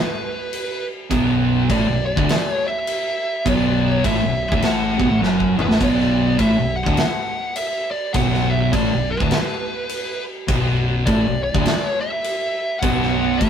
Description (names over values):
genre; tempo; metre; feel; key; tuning
stoner and doom metal; 102 BPM; 4/4; swing 62% on 8ths; B minor; A4 = 440 Hz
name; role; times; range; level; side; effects
fuzz lead guitar; melody; 0.0-13.5 s; B4 to F#5; -24 LUFS; equal; distortion
big rock drum kit; drums; 0.5-13.5 s; crash cymbal, kick drum, snare drum, toms; -24 LUFS; equal; none
thick fuzz guitar; riff; 1.1-13.5 s; B1 to A3; -21 LUFS; left 4 dB; distortion
thick fuzz guitar; riff; 1.1-13.5 s; B1 to A3; -21 LUFS; right 6 dB; distortion
growling fingered electric bass; bass; 1.1-13.5 s; B0 to A1; -26 LUFS; equal; overdrive
room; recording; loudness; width
wet studio ambience, RT60 0.5 s; rough rehearsal-room recording; -17 LUFS; side -8 dB against mid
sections
0.0-13.5 A section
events
drum fill 5.2-5.8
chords
0.0 Bm